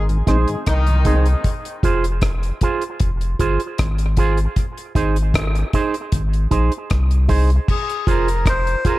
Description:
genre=dub reggae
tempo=77 BPM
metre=4/4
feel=straight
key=F minor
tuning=A4 = 439 Hz
part: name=warm horn section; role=second line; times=0.0-1.2 s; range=Eb3 to Ab4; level=-26 LUFS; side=left 2 dB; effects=dub echo
part: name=soft dub sub bass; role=bass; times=0.0-8.8 s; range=F1 to C2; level=-18 LUFS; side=equal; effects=none
part: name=mellow tonewheel organ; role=accompaniment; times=0.1-1.2 s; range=Ab2 to Eb4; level=-28 LUFS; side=left 2 dB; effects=slow rotary speaker, low-pass filter, dub echo
part: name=deep reggae drum kit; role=drums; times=0.1-9.0 s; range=crash cymbal, hi-hat, kick drum, rim click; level=-20 LUFS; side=equal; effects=none
part: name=electric guitar with an envelope filter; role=accompaniment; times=0.3-9.0 s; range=Eb4 to C5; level=-24 LUFS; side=right 6 dB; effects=high-pass filter, low-pass filter, dub echo
part: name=melodica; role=melody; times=7.7-9.0 s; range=Ab4 to C5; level=-22 LUFS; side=left 2 dB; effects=low-pass filter, dub echo
room=light reverb, studio reverb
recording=echo-heavy mix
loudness=-16 LUFS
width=side -17 dB against mid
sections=0.0-7.7 A section; 7.7-9.0 B section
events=break 0.0-7.7; filter sweep 0.0-7.7; filter sweep on clean electric guitar 7.7-9.0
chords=0.0 Ab; 1.4 Fm; 4.6 Ab; 7.7 Fm

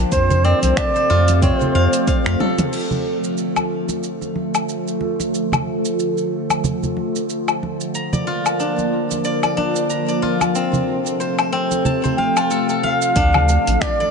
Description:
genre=organic downtempo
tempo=92 BPM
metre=4/4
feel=swing 57% on 16ths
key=D minor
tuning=A4 = 445 Hz
part: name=warbly tape-like pad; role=sustained chords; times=0.0-14.1 s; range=C3 to Bb4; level=-22 LUFS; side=right 1 dB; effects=chorus, built-in reverb, phaser, sidechain pumping
part: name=steel-string zither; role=arpeggios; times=0.0-14.1 s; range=C4 to Bb5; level=-22 LUFS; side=left 2 dB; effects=ping-pong delay
part: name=warm sub bass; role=bass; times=0.0-2.4, 13.2-13.8 s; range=A1 to F2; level=-17 LUFS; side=equal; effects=sidechain pumping
part: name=bright bansuri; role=melody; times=0.1-2.4, 12.2-14.1 s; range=C5 to G5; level=-20 LUFS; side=right 1 dB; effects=digital delay
part: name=deep house drum kit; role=drums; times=0.1-14.0 s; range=crash cymbal, finger snaps, hi-hat, shaker, toms, woodblock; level=-23 LUFS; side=left 3 dB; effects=none
part: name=electronic kick drum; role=drums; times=0.1-2.2, 13.2-14.0 s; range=none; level=-21 LUFS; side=equal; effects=none
part: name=congas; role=percussion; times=0.3-14.1 s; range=none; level=-24 LUFS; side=right 3 dB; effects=none
room=moderate lush hall reverb, RT60 3.1 s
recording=nothing above 10.3 kHz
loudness=-16 LUFS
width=side -5 dB against mid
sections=0.0-2.7 A section; 2.7-13.2 B section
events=drum fill 2.4-2.7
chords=0.1 F; 2.7 Dm; 7.9 Bb; 10.6 F; 13.2 Dm

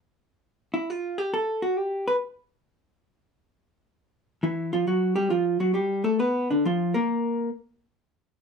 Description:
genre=jazz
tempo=135 BPM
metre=4/4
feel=swing 66% on 8ths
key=unclear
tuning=A4 = 441 Hz
part: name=vintage hollow-body jazz guitar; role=solo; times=0.7-7.5 s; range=D3 to B4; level=-23 LUFS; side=equal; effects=none
room=moderate studio reverb, RT60 0.5 s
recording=none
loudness=-24 LUFS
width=side -5 dB against mid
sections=0.0-8.4 A section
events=none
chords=0.0 G13; 7.1 N.C.

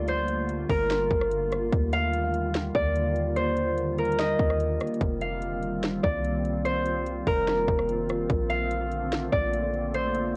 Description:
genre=hip hop, atmospheric cloud-rap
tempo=146 BPM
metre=4/4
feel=half-time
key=Bb major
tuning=A4 = 439 Hz
part: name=concert harp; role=melody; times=0.0-10.4 s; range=Bb4 to F5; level=-30 LUFS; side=equal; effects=low-pass filter, cassette tape, analog delay
part: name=glassy FM pad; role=sustained chords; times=0.0-10.4 s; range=D3 to F4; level=-34 LUFS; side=equal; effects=ensemble chorus, built-in reverb, sidechain pumping, cassette tape
part: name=warm 808-style bass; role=bass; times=0.0-10.4 s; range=F1 to Eb2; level=-34 LUFS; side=equal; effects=none
part: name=trap drum kit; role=drums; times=0.1-10.2 s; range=hi-hat, kick drum, rim click, snare drum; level=-32 LUFS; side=equal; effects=vintage 12-bit sampler grit, cassette tape
room=light reverb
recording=home recording on cassette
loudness=-27 LUFS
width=mono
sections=0.0-10.4 A section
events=none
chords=0.0 Gm9; 1.7 Ebmaj9; 5.0 F9sus4; 8.3 Bbmaj9

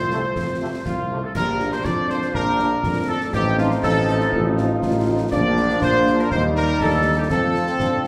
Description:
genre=military-style march for wind band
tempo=121 BPM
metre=2/4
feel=straight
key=Bb major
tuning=A4 = 439 Hz
part: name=dark trumpet section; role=melody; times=0.0-8.1 s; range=F4 to D5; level=-27 LUFS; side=equal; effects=none
part: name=dark euphonium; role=second line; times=0.0-8.1 s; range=C4 to G4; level=-30 LUFS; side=equal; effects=none
part: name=warm woodwind section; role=second line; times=0.0-8.1 s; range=F4 to D5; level=-29 LUFS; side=equal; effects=none
part: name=mellow tuba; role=bass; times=0.0-8.1 s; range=A1 to F2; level=-26 LUFS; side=equal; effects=none
part: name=dark French horn section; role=accompaniment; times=0.1-8.1 s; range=F3 to Eb4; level=-30 LUFS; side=equal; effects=none
part: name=warm trombone section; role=sustained chords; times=0.1-8.1 s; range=C3 to Eb4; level=-30 LUFS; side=equal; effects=none
part: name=concert snare drum, concert bass drum and clash cymbals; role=drums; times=0.1-8.1 s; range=none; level=-31 LUFS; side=equal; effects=none
room=wet recital hall reverb, RT60 1.4 s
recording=recorded in a church or concert hall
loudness=-20 LUFS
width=mono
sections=0.0-1.4 A section; 1.4-8.1 B section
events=none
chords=0.0 F; 1.4 Bb; 3.3 F7/A; 5.3 Bb; 6.3 Eb; 7.3 F

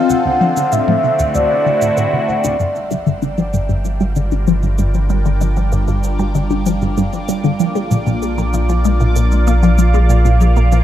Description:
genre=ambient, sequencer-driven space music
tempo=96 BPM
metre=4/4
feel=straight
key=G minor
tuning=A4 = 440 Hz
part: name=mellow horn-like synth lead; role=melody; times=0.0-2.2 s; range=D5 to F#5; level=-18 LUFS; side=equal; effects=chorus, shimmer reverb, tape echo
part: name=phased analog pad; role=sustained chords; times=0.0-10.8 s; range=Bb2 to G5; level=-20 LUFS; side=left 1 dB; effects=phaser, chorus, shimmer reverb
part: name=bubbling stepped-filter texture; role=texture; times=0.0-10.8 s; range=C5 to D6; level=-32 LUFS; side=equal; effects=chorus, built-in reverb, shimmer reverb
part: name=resonant blip pluck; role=riff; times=0.1-10.8 s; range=D2 to Bb3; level=-18 LUFS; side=left 1 dB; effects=phaser, vintage 12-bit sampler grit, tape echo
part: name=electronic cabasa and toms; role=percussion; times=0.1-10.8 s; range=none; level=-24 LUFS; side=left 2 dB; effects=overdrive, tape echo
part: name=round analog bass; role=bass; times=2.6-10.8 s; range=G1 to Bb1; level=-15 LUFS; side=equal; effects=none
room=wet spring reverb, RT60 2.7 s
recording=echo-heavy mix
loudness=-13 LUFS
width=side -12 dB against mid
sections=0.0-2.6 A section; 2.6-10.8 B section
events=fade-in on analog synth pad 2.6-10.8; fade-in on synth texture 2.6-10.8; fade-in on drum 2.6-10.8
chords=0.1 D7; 2.6 Gm7; 7.6 Bb

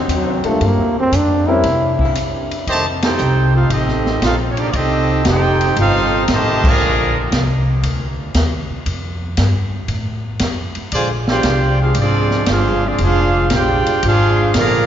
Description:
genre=jazz, big band swing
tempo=116 BPM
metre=4/4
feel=swing 68% on 8ths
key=unclear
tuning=A4 = 440 Hz
part: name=warm trombone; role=melody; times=0.0-2.0 s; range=F#3 to E4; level=-19 LUFS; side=equal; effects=none
part: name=bright saxophone section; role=sustained chords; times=0.0-2.1 s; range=Db3 to E4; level=-30 LUFS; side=left 3 dB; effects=none
part: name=upright bass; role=bass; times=0.0-14.9 s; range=F1 to C3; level=-18 LUFS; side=equal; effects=none
part: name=swinging big-band drum kit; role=drums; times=0.1-14.7 s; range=crash cymbal, hi-hat, kick drum, ride cymbal, snare drum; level=-22 LUFS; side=equal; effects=none
part: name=warm baby grand piano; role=accompaniment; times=0.4-1.6 s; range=G3 to Bb4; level=-23 LUFS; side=left 3 dB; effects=none
part: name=bright trumpet section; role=melody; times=2.7-7.2, 10.9-14.9 s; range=Bb3 to Bb5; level=-18 LUFS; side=right 1 dB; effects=none
part: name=warm trombone section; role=second line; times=2.7-7.2, 10.9-14.9 s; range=C3 to G4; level=-20 LUFS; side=right 2 dB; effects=none
room=wet cathedral reverb, RT60 4.9 s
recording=recorded in a church or concert hall, nothing above 7.5 kHz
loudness=-14 LUFS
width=side -10 dB against mid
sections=0.0-2.7 A section; 2.7-14.9 B section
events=trombone solo 0.0-2.7; break 2.2-2.7; band accent 2.9, 6.5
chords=0.0 D7b9; 0.6 Gm7; 1.6 C; 2.7 F9; 6.8 Bbadd9; 8.9 Fadd9; 10.9 Bb9

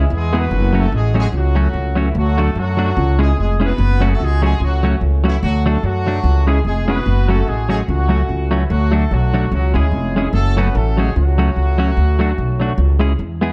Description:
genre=ska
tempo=147 BPM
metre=4/4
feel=swing 57% on 8ths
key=F# minor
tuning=A4 = 441 Hz
part: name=warm horn section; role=melody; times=0.0-13.1 s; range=E3 to B4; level=-25 LUFS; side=equal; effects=slapback echo
part: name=semi-hollow electric guitar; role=accompaniment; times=0.0-13.5 s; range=F#3 to G#4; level=-24 LUFS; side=equal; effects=slapback echo
part: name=upright bass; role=bass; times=0.0-13.5 s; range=E#1 to F#2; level=-18 LUFS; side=equal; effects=none
room=light reverb, small room reverb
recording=dark, warm production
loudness=-16 LUFS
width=mono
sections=0.5-13.5 A section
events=none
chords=0.1 E; 0.5 F#m; 2.1 D; 3.0 C#m; 3.8 F#m; 5.4 D; 6.2 C#m; 7.1 F#m; 8.7 D; 9.5 C#m; 10.3 F#m; 12.0 D; 12.8 C#m

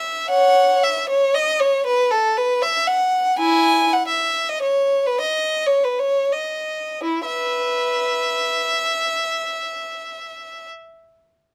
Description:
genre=classical, baroque-style suite movement for unaccompanied violin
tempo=80-121 BPM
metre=3/4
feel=rubato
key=E major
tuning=A4 = 440 Hz
part: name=rich violin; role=solo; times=0.0-10.7 s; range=E4 to G#5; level=-20 LUFS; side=equal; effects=none
room=light reverb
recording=none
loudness=-20 LUFS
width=mono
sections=0.0-7.0 A section; 7.0-11.3 B section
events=slowing down 2.6-7.0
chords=none

